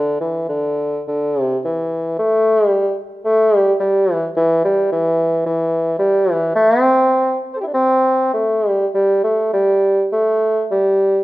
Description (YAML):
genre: japanese traditional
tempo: 49-57 BPM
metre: 2/4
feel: rubato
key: unclear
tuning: A4 = 440 Hz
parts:
  - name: mellow bassoon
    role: solo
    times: 0.0-11.2 s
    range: D3 to C5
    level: -14 LUFS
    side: equal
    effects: none
room: moderate recital hall reverb, RT60 1.4 s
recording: none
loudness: -14 LUFS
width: side -17 dB against mid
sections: 0.0-11.2 A section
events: none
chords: none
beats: 1.06 | 2.17 3.24 | 4.33 5.43 | 6.53 7.71 | 8.91 10.09